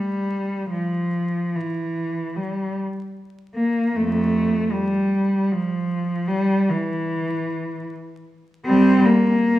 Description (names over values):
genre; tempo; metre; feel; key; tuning
classical, free, expressive piece for unaccompanied cello; free time; none; none; unclear; A4 = 439 Hz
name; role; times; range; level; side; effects
warm cello; solo; 0.0-9.6 s; F2 to C4; -19 LUFS; equal; none
room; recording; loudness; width
wet recital hall reverb, RT60 1.5 s; vinyl crackle, studio reverb; -19 LUFS; side -14 dB against mid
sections
0.0-9.6 A section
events
none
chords
none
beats
free time